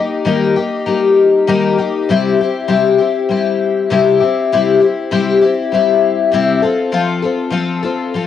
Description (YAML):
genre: rock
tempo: 99 BPM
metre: 4/4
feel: straight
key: unclear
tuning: A4 = 440 Hz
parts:
  - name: picked twelve-string acoustic guitar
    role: solo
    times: 0.0-8.3 s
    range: C3 to A4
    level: -12 LUFS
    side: left 5 dB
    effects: lush chorus, cassette tape
room: light reverb, studio reverb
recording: home recording on cassette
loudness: -12 LUFS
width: side -10 dB against mid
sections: 0.0-8.3 A section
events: none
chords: 0.0 Eb; 2.1 C; 6.6 F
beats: 0.27 0.87 1.48 | 2.09 2.69 3.30 3.91 | 4.51 5.12 5.72 6.33 | 6.94 7.55 8.15